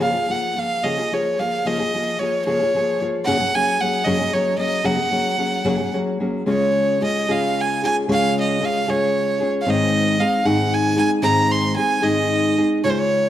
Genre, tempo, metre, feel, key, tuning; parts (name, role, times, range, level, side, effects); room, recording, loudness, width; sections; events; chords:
mexican folk; 75 BPM (dotted quarters); 6/8; rubato; F# major, Db major from 6.5 s; A4 = 440 Hz
rich violin; melody; 0.0-13.3 s; C5 to C6; -20 LUFS; right 1 dB
nylon-string guitar; accompaniment; 0.0-13.3 s; F#2 to G#4; -20 LUFS; left 1 dB
moderate recital hall reverb, RT60 1.4 s; -17 LUFS; side -12 dB against mid
0.0-6.5 A section; 6.5-13.3 B section
0.0 C#6; 3.3 F#add9; 6.5 Db; 9.7 Ab